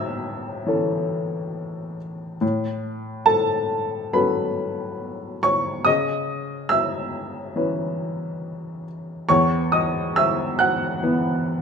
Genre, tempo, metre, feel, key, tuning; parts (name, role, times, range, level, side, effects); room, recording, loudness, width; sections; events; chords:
neoclassical minimalist piano; 70 BPM; 4/4; rubato; C# minor; A4 = 442 Hz
clear upright piano; solo; 0.0-11.6 s; E2 to F#6; -21 LUFS; equal
moderate scoring stage reverb, RT60 1.8 s; minimal, uncompressed stereo recording; -20 LUFS; side -6 dB against mid
0.0-11.6 A section
0.0 A; 2.4 F#m/A; 5.8 C#m7; 9.3 Esus2